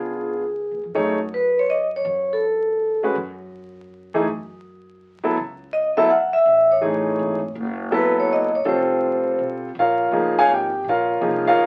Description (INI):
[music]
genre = jazz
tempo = 164 BPM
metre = 3/4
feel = swing 66% on 8ths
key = F# dorian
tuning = A4 = 440 Hz
[part]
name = vibraphone with medium mallets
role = melody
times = 0.0-3.0, 5.7-9.4 s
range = Ab4 to F#5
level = -21 LUFS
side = equal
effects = none
[part]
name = clear concert grand piano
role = accompaniment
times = 0.0-11.7 s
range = E3 to Ab5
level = -22 LUFS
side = equal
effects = none
[part]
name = upright bass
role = bass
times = 0.0-11.7 s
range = F1 to F#2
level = -39 LUFS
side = equal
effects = none
[sound]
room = moderate small room reverb, RT60 0.5 s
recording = very old 78 rpm record, vinyl crackle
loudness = -21 LUFS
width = mono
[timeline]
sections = 1.0-9.8 A section; 9.8-11.7 B section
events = none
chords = 0.0 Db7b9; 1.0 F#m9; 8.7 F; 9.8 Bbm7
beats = 0.22 0.59 | 0.96 1.32 1.69 | 2.06 2.42 2.79 | 3.16 3.53 3.89 | 4.26 4.63 4.99 | 5.36 5.73 6.09 | 6.46 6.83 7.20 | 7.56 7.93 8.29 | 8.66 9.03 9.39 | 9.76 10.13 10.49 | 10.86 11.23 11.59